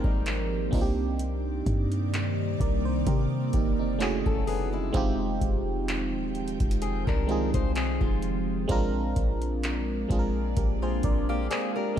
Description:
contemporary R&B; 64 BPM; 4/4; swing 54% on 16ths; A4 = 440 Hz
FM electric piano; accompaniment; 0.0-12.0 s; Ab3 to F5; -30 LUFS; right 2 dB; chorus
ethereal airy pad; sustained chords; 0.0-12.0 s; C3 to G5; -34 LUFS; right 1 dB; ensemble chorus, built-in reverb, phaser
fingerpicked acoustic archtop guitar; arpeggios; 0.0-12.0 s; G3 to C5; -34 LUFS; left 9 dB
warm 808-style bass; bass; 0.0-11.5 s; Eb1 to C3; -30 LUFS; equal
booming analog drum machine; drums; 0.0-12.0 s; handclaps, hi-hat, kick drum; -28 LUFS; equal
little or no reverb; dark, warm production; -25 LUFS; side -10 dB against mid
0.0-12.0 A section
0.0 Abmaj7; 0.7 Cm7; 4.0 F#m9; 4.9 Fm9; 8.7 Bb7

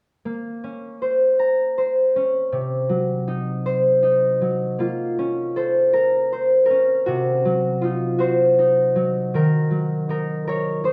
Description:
children's music; 53 BPM (dotted quarters); 6/8; rubato; Bb minor; A4 = 438 Hz
concert harp; melody; 0.3-10.9 s; C3 to Bb5; -20 LUFS; equal; slapback echo
wet recital hall reverb, RT60 1.6 s; close, detailed microphones; -20 LUFS; mono
0.2-4.8 A section; 4.8-10.9 B section
0.2 Bbmadd9; 2.5 Cdim; 4.8 Bbmadd9; 7.1 Cdim; 9.3 Ebm

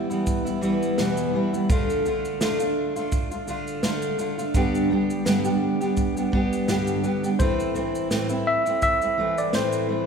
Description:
acoustic pop; 84 BPM; 4/4; swing 55% on 16ths; A minor; A4 = 440 Hz
fingerpicked steel-string acoustic guitar; accompaniment; 0.0-10.1 s; E2 to G4; -23 LUFS; equal
natural country drum kit; drums; 0.1-9.9 s; kick drum, shaker, snare drum; -28 LUFS; right 1 dB
tine electric piano; melody; 7.4-10.1 s; C5 to E5; -24 LUFS; left 1 dB
wet concert hall reverb, RT60 2.5 s; recorded in a church or concert hall; -21 LUFS; side -6 dB against mid
0.0-10.1 A section
0.0 Em; 1.7 Dm; 4.6 G; 7.4 Am

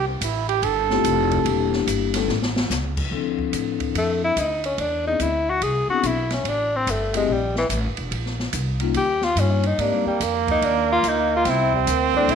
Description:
jazz, small-group swing and bop; 144 BPM; 4/4; swing 65% on 8ths; A4 = 438 Hz
breathy trumpet; second line; 0.0-1.9, 9.8-12.3 s; Bb3 to A4; -22 LUFS; right 10 dB
upright bass; bass; 0.0-12.3 s; E1 to A2; -26 LUFS; equal
open jazz drum kit; drums; 0.2-12.3 s; crash cymbal, hi-hat, kick drum, ride cymbal, snare drum; -29 LUFS; right 1 dB
vibraphone with soft mallets; accompaniment; 0.9-12.3 s; F3 to A4; -25 LUFS; left 12 dB
mellow tenor saxophone; melody; 4.0-12.3 s; E3 to G#4; -22 LUFS; left 2 dB; slapback echo
moderate echo chamber reverb, RT60 1.3 s, small room ambience; 1960s-style stereo with parts hard left and right; -19 LUFS; side -7 dB against mid
0.0-3.1 A section; 3.1-12.3 B section
trumpet solo 0.0-3.1; drum fill 2.3-2.7
0.0 Fmaj9; 1.5 Em7b5; 2.3 A; 3.1 Dm7; 4.8 E7b13; 6.5 A7(no3); 8.1 Bbmadd9; 9.0 Eb7; 9.8 Abmaj7; 11.5 C13

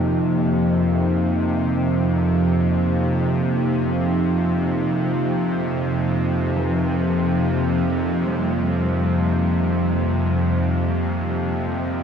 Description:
dark ambient drone; free time; A4 = 439 Hz
deep dark ambient pad; sustained chords; 0.0-12.0 s; F3 to F5; -23 LUFS; equal; chorus, built-in reverb
gamelan-type bronze metallophone; arpeggios; 0.0-12.0 s; F3 to G3; -31 LUFS; left 2 dB
bowed-like drone; drone; 0.0-12.0 s; F2 to C3; -20 LUFS; equal; built-in reverb
wet cathedral reverb, RT60 7.5 s; dreamy mix soaked in reverb; -18 LUFS; side -7 dB against mid
0.0-12.0 A section
0.0 F5

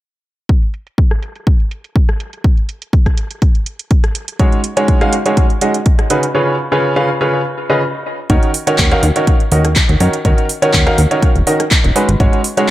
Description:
piano house; 123 BPM; 4/4; swing 53% on 16ths; Eb minor; A4 = 440 Hz
electronic kick drum; drums; 0.5-12.3 s; -12 LUFS; equal
house drum kit; drums; 0.5-12.7 s; handclaps, hi-hat, rim click; -19 LUFS; right 1 dB; low-pass filter on hats, low-pass filter on snare
bright baby grand piano; riff; 4.4-12.7 s; Db3 to F5; -14 LUFS; right 1 dB; sidechain pumping, tape echo
plucky analog bass; bass; 8.3-12.3 s; Eb1 to Gb2; -14 LUFS; equal; sidechain pumping
light reverb; echo-heavy mix; -12 LUFS; side -15 dB against mid
0.5-8.3 A section; 8.3-12.7 B section
filter sweep on drum 0.5-8.3; break 6.3-8.3
0.5 N.C.; 4.2 Ab7sus4; 6.3 Db7; 8.3 Ebm7; 12.0 Ab7sus4

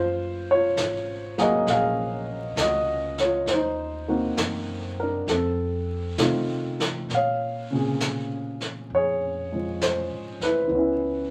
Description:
jazz ballad; 66 BPM; 4/4; swing 68% on 8ths; Bb minor; A4 = 441 Hz
dark baby grand piano; accompaniment; 0.0-11.3 s; Bb2 to F5; -26 LUFS; equal
upright bass; bass; 0.0-11.3 s; Gb1 to C3; -36 LUFS; equal
jazz brush drum kit; drums; 0.8-11.3 s; brushed snare drum, hi-hat, snare drum; -33 LUFS; equal
moderate studio reverb, RT60 0.6 s; vinyl crackle; -25 LUFS; mono
0.0-7.1 A section; 7.1-11.3 B section
0.0 Gbmaj9; 3.5 Cm7b5; 5.3 F7; 7.1 Bbm9; 10.7 Dbm7

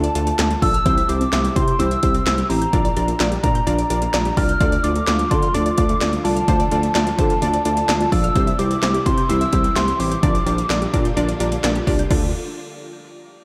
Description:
synth-pop; 128 BPM; 4/4; straight; D minor; A4 = 441 Hz
hollow clarinet-like synth lead; melody; 0.0-11.6 s; A5 to F6; -25 LUFS; equal; chorus, slapback echo, tape echo, shimmer reverb
funky polysynth comp; accompaniment; 0.0-12.3 s; A3 to F5; -26 LUFS; equal; chorus, slapback echo, shimmer reverb
unison pluck; arpeggios; 0.0-12.3 s; D3 to G6; -32 LUFS; equal; tape echo, shimmer reverb
smooth gliding synth bass; bass; 0.0-12.3 s; A1 to D3; -25 LUFS; equal
80s electronic pad drums; drums; 0.0-12.2 s; crash cymbal, handclaps, hi-hat, kick drum, snare drum; -24 LUFS; equal
soft string machine; sustained chords; 4.6-12.3 s; C3 to F4; -33 LUFS; equal
moderate lush hall reverb, RT60 1.9 s, digital ambience; big arena sound; -19 LUFS; mono
0.0-12.1 A section; 12.1-13.4 B section
0.0 Dm; 0.9 C; 2.7 Bb6; 4.6 Dm; 8.4 C; 10.2 Bb6; 12.1 Dm

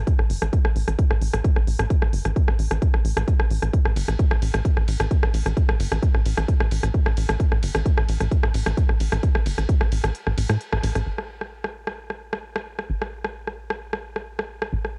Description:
driving peak-time techno; 131 BPM; 4/4; straight; A4 = 439 Hz
tight sequencer bass; bass; 0.0-15.0 s; G1 to A2; -27 LUFS; equal; sidechain pumping
electronic kick drum; drums; 0.1-9.8 s; -22 LUFS; equal; studio ambience, cassette tape
techno drum kit; drums; 0.1-14.9 s; hi-hat, ride cymbal, rim click; -30 LUFS; equal; sidechain pumping on hats, studio ambience, cassette tape, sidechain pumping on cymbals
little or no reverb; home recording on cassette; -23 LUFS; mono
0.0-11.1 A section; 11.1-15.0 B section
drop 0.0-11.1; break 10.1-11.1; band accent 10.7

